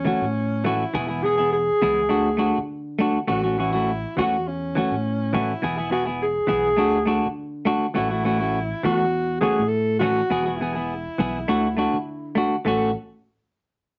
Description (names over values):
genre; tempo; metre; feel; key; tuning
highlife guitar band; 102 BPM; 4/4; straight; A major; A4 = 440 Hz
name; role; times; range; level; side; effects
mellow alto saxophone; melody; 0.0-12.9 s; C#4 to A4; -27 LUFS; equal; none
clean electric guitar; accompaniment; 0.0-12.9 s; E3 to G#4; -25 LUFS; equal; none
fingered electric bass; bass; 0.0-12.9 s; E1 to D3; -32 LUFS; equal; none
room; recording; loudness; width
moderate small room reverb, RT60 0.5 s; nothing above 7.7 kHz; -23 LUFS; mono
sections
0.0-12.7 A section; 12.7-14.0 B section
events
none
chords
0.0 A6; 0.9 E; 2.1 D; 3.3 A6; 5.6 E; 6.8 D; 8.0 A6; 10.3 E; 11.5 D; 12.7 A6